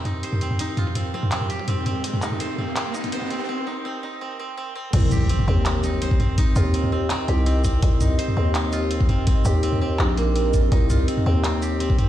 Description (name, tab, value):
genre	half-time drum and bass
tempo	166 BPM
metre	4/4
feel	half-time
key	C minor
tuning	A4 = 442 Hz
part	dark analog pad	sustained chords	0.0-12.1 s	C4 to Eb5	-30 LUFS	equal	chorus, phaser, vintage 12-bit sampler grit, sidechain pumping
part	koto	arpeggios	0.0-12.1 s	Bb3 to C5	-29 LUFS	right 3 dB	ping-pong delay
part	riser and impact	sound effects	0.8-6.4 s	none	-28 LUFS	equal	none
part	drum and bass drum kit	drums	0.1-12.1 s	crash cymbal, handclaps, hi-hat, shaker, toms	-26 LUFS	equal	none
part	electronic kick drum	drums	0.1-12.0 s	none	-20 LUFS	equal	overdrive, high-pass filter on kick, high-pass filter on room
part	growling 808-style bass	bass	4.9-12.0 s	Bb1 to Eb2	-21 LUFS	left 1 dB	none
room	digital ambience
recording	played on a big sound system in a bare room, stone room reverb, high-pass filter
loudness	-19 LUFS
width	side -12 dB against mid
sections	0.0-4.9 A section; 4.9-12.1 B section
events	build-up 0.0-4.9; filter sweep 0.0-4.9; riser 0.8-3.5; break 3.5-4.9; drop 4.9-12.1; impact 4.9-6.4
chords	0.0 Cm